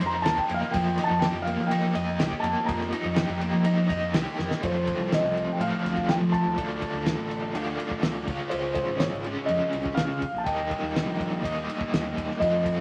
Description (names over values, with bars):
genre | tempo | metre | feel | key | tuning
psychedelic rock | 123 BPM | 4/4 | straight | unclear | A4 = 441 Hz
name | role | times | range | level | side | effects
felt-muted upright piano | melody | 0.0-12.8 s | C5 to Bb5 | -31 LUFS | equal | none
overdriven electric guitar | riff | 0.0-12.8 s | Db3 to Eb5 | -31 LUFS | equal | tremolo
fuzz fingered electric bass | bass | 0.0-12.8 s | Ab1 to F3 | -33 LUFS | equal | overdrive
damped 70s drum kit | drums | 0.0-12.8 s | kick drum, ride cymbal, snare drum | -34 LUFS | equal | none
room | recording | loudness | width
wet studio reverb, RT60 0.6 s | vinyl crackle | -27 LUFS | mono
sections
0.0-4.6 A section; 4.6-12.8 B section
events
felt piano solo 0.0-4.6; drum fill 4.4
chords
0.0 F7sus4; 0.7 Ebadd9; 4.6 F; 6.6 Dm; 8.3 Db; 10.5 Eb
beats
0.26 | 0.74 1.23 1.71 2.20 | 2.68 3.17 3.65 4.14 | 4.62 5.11 5.59 6.08 | 6.57 7.05 7.54 8.03 | 8.51 9.00 9.48 9.97 | 10.46 10.95 11.43 11.92 | 12.40